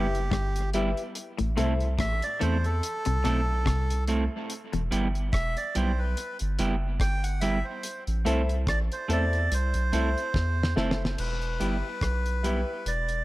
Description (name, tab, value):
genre	dub reggae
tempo	72 BPM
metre	4/4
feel	swing 56% on 16ths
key	E minor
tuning	A4 = 440 Hz
part	melodica	melody	0.0-13.2 s	G4 to G5	-32 LUFS	right 1 dB	tape echo
part	semi-hollow electric guitar	accompaniment	0.0-12.6 s	G3 to A4	-32 LUFS	right 3 dB	tape echo
part	semi-hollow electric guitar	riff	0.0-4.8 s	E2 to E3	-34 LUFS	left 5 dB	tape echo
part	warm upright piano	stabs	0.0-1.8, 8.3-12.7 s	E4 to E5	-35 LUFS	left 4 dB	tape echo
part	soft dub sub bass	bass	0.0-13.2 s	E1 to E2	-27 LUFS	equal	none
part	cloth-damped thuddy drum kit	drums	0.1-13.2 s	crash cymbal, hi-hat, kick drum, rim click, snare drum	-32 LUFS	equal	none
room	little or no reverb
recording	none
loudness	-25 LUFS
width	side -18 dB against mid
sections	0.0-11.2 A section; 11.2-13.2 B section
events	drum fill 10.3-11.2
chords	0.0 Em; 1.2 Am; 4.5 Em; 7.8 Am; 11.2 Em